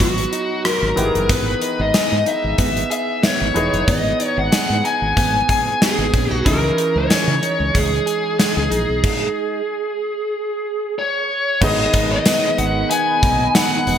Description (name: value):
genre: 1980s-style pop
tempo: 93 BPM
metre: 4/4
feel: swing 55% on 16ths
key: G# minor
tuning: A4 = 443 Hz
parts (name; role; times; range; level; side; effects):
- bluesy overdriven lead guitar; melody; 0.0-14.0 s; F#4 to G#5; -19 LUFS; left 1 dB; distortion, digital delay
- clear concert grand piano; accompaniment; 0.0-14.0 s; D#3 to G#4; -27 LUFS; equal; none
- direct-recorded clean electric guitar; riff; 0.0-14.0 s; D#3 to G#4; -25 LUFS; right 4 dB; wide subtle chorus, digital delay
- woody fretless electric bass; bass; 0.0-14.0 s; E1 to C#3; -22 LUFS; equal; none
- gated 80s drum kit; drums; 0.0-14.0 s; crash cymbal, hi-hat, kick drum, rim click, snare drum, tambourine; -19 LUFS; equal; gated reverb
- phased analog pad; sustained chords; 11.6-14.0 s; B3 to B5; -27 LUFS; left 2 dB; phaser, chorus
room: moderate lush hall reverb, RT60 2.1 s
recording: bright 1980s-style digital production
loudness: -16 LUFS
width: side -9 dB against mid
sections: 0.0-11.6 A section; 11.6-14.0 B section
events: stop 9.0-11.6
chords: 0.0 G#m7; 1.0 Emaj7; 6.5 C#madd9; 11.6 G#m